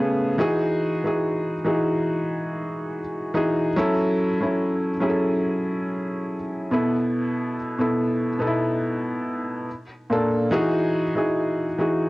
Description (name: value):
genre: hip hop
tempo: 71 BPM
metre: 4/4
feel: swing 55% on 16ths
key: E major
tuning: A4 = 440 Hz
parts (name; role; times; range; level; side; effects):
- felt-muted upright piano; solo; 0.0-12.1 s; A#2 to B4; -21 LUFS; equal; cassette tape
room: light reverb, small room ambience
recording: home recording on cassette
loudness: -21 LUFS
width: side -20 dB against mid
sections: 0.0-12.1 A section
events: none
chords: 0.4 Emaj9; 3.8 F#m7; 6.7 B7sus4; 9.7 A#maj7; 10.5 Emaj9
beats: | 0.38 1.22 2.06 2.91 | 3.75 4.60 5.45 6.29 | 7.13 7.98 8.82 9.67 | 10.52 11.36